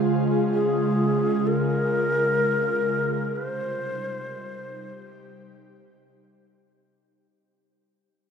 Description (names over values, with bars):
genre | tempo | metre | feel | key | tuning
ambient | free time | none | none | unclear | A4 = 440 Hz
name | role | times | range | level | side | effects
airy breathy pad | sustained chords | 0.0-7.2 s | C3 to Ab4 | -25 LUFS | equal | chorus
breathy mellow shakuhachi | melody | 0.5-6.2 s | Ab4 to C5 | -26 LUFS | left 1 dB | tape echo
room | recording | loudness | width
wet huge ambient reverb, RT60 7.5 s | none | -21 LUFS | side -6 dB against mid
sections
0.0-7.2 A section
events
fade-out 0.0-7.2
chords
0.0 Db; 3.4 Cm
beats
free time